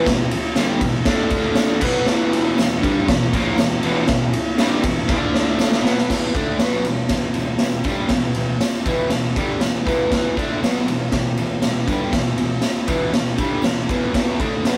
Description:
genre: garage rock duo or trio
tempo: 119 BPM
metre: 4/4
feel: straight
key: E minor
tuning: A4 = 439 Hz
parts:
  - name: fuzz guitar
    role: riff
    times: 0.0-14.8 s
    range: E2 to D4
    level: -23 LUFS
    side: equal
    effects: distortion
  - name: raw garage drum kit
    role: drums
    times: 0.1-14.8 s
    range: crash cymbal, kick drum, ride cymbal, snare drum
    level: -22 LUFS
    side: equal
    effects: none
  - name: tambourine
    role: percussion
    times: 0.6-14.8 s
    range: none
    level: -46 LUFS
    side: equal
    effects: none
room: moderate small room reverb, RT60 0.5 s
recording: rough rehearsal-room recording, warm saturation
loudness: -20 LUFS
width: mono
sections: 0.0-6.1 A section; 6.1-14.8 B section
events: drum fill 5.1-6.1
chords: 0.0 Em; 1.1 D5; 1.8 Em; 5.1 D5; 5.8 B5; 6.1 Em

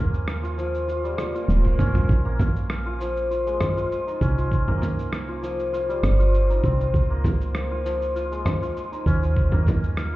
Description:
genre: organic downtempo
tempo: 99 BPM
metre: 4/4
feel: straight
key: unclear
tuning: A4 = 442 Hz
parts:
  - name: santur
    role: arpeggios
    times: 0.0-10.2 s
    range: F3 to F4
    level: -26 LUFS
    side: left 2 dB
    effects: low-pass filter, ping-pong delay
  - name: woody FM bass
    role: bass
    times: 0.0-10.2 s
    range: Eb1 to Eb2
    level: -24 LUFS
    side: right 1 dB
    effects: tube saturation, sidechain pumping
  - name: dusty soul sampler-style drum kit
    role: drums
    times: 0.1-10.1 s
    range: cabasa, rim click, toms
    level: -30 LUFS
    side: right 1 dB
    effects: small room ambience
  - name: swell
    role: sound effects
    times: 1.1-2.1 s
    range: none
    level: -35 LUFS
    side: right 5 dB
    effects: none
  - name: electronic kick drum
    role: drums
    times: 1.6-9.8 s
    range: none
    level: -25 LUFS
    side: right 1 dB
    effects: small room ambience
  - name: frame drum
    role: percussion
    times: 2.4-9.8 s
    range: none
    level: -26 LUFS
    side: equal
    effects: none
room: light reverb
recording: heard muffled through a wall, club reverb, EQ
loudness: -21 LUFS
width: side -17 dB against mid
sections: 0.0-10.2 A section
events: swell 1.1-2.1; drum fill 1.6-2.1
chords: 0.0 Eb7; 2.1 Bbm11; 4.5 Cm7; 6.9 Dbadd9; 9.4 Eb7(no3)

